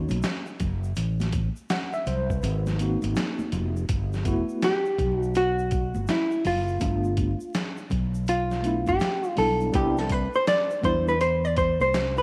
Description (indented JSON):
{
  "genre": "hip hop, jazz-hop",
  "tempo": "82 BPM",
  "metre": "4/4",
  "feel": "swing 64% on 16ths",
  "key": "G major",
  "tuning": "A4 = 440 Hz",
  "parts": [
    { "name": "vintage hollow-body jazz guitar", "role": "melody", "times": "0.0-0.1, 4.6-12.2 s", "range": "E4 to D5", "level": "-27 LUFS", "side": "equal", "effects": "none" },
    { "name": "mellow tine electric piano", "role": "accompaniment", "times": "0.0-11.1 s", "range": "G3 to F#5", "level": "-33 LUFS", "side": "equal", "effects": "medium tremolo" },
    { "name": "fretless electric bass", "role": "bass", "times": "0.0-12.2 s", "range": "F1 to E2", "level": "-30 LUFS", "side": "equal", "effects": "subtle chorus" },
    { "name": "boom bap sampler-style drum kit", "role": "drums", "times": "0.1-12.2 s", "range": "hi-hat, kick drum, snare drum", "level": "-32 LUFS", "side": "equal", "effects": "none" },
    { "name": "congas and egg shaker", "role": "percussion", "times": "0.1-12.2 s", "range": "none", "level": "-41 LUFS", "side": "equal", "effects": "none" }
  ],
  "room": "moderate echo chamber reverb, RT60 2.2 s",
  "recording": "vinyl crackle",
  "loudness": "-25 LUFS",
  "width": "mono",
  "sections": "0.0-3.9 A section; 3.9-12.2 B section",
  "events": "kick muted 2.4-3.9; hollow-body jazz guitar solo 3.9-12.2",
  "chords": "0.0 Bmaj9 (rootless); 1.0 Am; 2.4 Ab9; 3.9 Gmaj13; 6.8 G7; 9.7 Cmaj9"
}